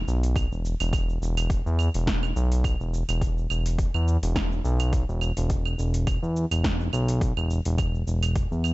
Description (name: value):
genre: organic downtempo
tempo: 105 BPM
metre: 4/4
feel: swing 55% on 16ths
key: unclear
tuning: A4 = 440 Hz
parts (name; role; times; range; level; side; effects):
- smooth synth bass; bass; 0.0-8.7 s; E1 to E2; -24 LUFS; equal; sidechain pumping
- deep house drum kit; drums; 0.1-8.7 s; cabasa, claves, hi-hat, snare drum; -32 LUFS; right 3 dB; overdrive
- electronic kick drum; drums; 0.4-8.5 s; none; -27 LUFS; equal; overdrive
room: little or no reverb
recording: nothing above 7.9 kHz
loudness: -23 LUFS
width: side -19 dB against mid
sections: 0.0-8.7 A section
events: none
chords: none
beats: 0.36 | 0.93 1.50 2.07 2.64 | 3.21 3.79 4.36 4.93 | 5.50 6.07 6.64 7.21 | 7.79 8.36